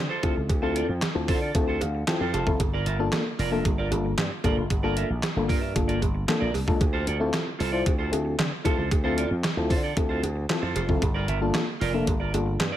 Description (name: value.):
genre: early-eighties boogie funk.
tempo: 114 BPM.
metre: 4/4.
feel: straight.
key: G dorian.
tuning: A4 = 440 Hz.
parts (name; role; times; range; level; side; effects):
slap bass with an envelope filter; bass; 0.0-12.7 s; F1 to D3; -28 LUFS; equal; none.
clean electric guitar; riff; 0.1-12.8 s; F4 to E5; -32 LUFS; right 4 dB; tube saturation, wide subtle chorus.
mellow FM electric piano; accompaniment; 0.2-12.6 s; Bb3 to A5; -29 LUFS; left 3 dB; chorus, tremolo.
detuned 8-bit digital drum machine; drums; 0.2-12.7 s; handclaps, hi-hat, kick drum, snare drum; -27 LUFS; equal; gated reverb.
cowbell; percussion; 0.2-12.7 s; none; -36 LUFS; right 7 dB; none.
room: light reverb, digital ambience.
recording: none.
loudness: -23 LUFS.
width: side -12 dB against mid.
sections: 0.0-12.8 A section.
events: FM electric piano fill 1.5-2.6.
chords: 0.0 Dm7; 2.6 Gm7; 6.8 Dm7; 11.0 Gm7.